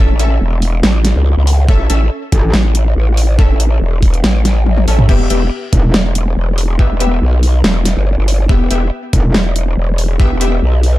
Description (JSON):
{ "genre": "heavy wobble dubstep", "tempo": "141 BPM", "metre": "4/4", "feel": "half-time", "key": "E dorian", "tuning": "A4 = 440 Hz", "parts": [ { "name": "orchestra-hit-like synth stab", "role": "stabs", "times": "0.0-10.5 s", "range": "B3 to E5", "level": "-20 LUFS", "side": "left 3 dB", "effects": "built-in reverb, tape echo" }, { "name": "growl bass", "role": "bass", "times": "0.0-11.0 s", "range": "E1 to C#2", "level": "-12 LUFS", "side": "equal", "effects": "chorus, overdrive" }, { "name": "dubstep drum kit", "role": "drums", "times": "0.2-10.9 s", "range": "crash cymbal, hi-hat, snare drum, toms", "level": "-17 LUFS", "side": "equal", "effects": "none" }, { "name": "electronic kick drum", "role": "drums", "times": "1.7-10.3 s", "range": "none", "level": "-11 LUFS", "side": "equal", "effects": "none" }, { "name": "metallic wobble bass", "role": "bass", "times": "2.3-2.5, 5.7-5.9, 9.1-9.3 s", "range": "E1 to A1", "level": "-13 LUFS", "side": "equal", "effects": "chorus, overdrive" } ], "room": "digital ambience", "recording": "dark, warm production", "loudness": "-10 LUFS", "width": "side -16 dB against mid", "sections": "0.0-11.0 A section", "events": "drum fill 4.7-5.1", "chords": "0.0 A; 5.1 Em" }